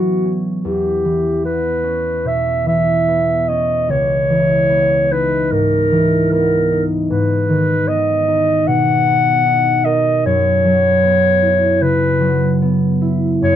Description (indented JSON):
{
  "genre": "classical, impressionist duo for clarinet and harp",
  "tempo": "75 BPM",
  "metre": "4/4",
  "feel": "rubato",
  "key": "unclear",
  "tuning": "A4 = 440 Hz",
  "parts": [
    { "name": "mellow clarinet", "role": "melody", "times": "0.0-13.6 s", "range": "F#4 to F#5", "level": "-15 LUFS", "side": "equal", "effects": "none" },
    { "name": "concert harp", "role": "accompaniment", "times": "0.0-13.6 s", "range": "C#2 to A#4", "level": "-17 LUFS", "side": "equal", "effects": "none" }
  ],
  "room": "moderate studio reverb, RT60 0.5 s",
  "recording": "dark, warm production",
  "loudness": "-13 LUFS",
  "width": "side -10 dB against mid",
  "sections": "0.0-13.6 A section",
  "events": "none",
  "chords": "0.0 A69; 0.7 Em6; 3.9 C#m9; 7.1 G#m; 8.7 Bmaj7; 10.3 F#7sus4",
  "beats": "| 0.66 1.46 2.27 3.09 | 3.91 4.72 5.52 6.32 | 7.10 7.88 8.68 9.47 | 10.26 11.05 11.82 12.62 | 13.43"
}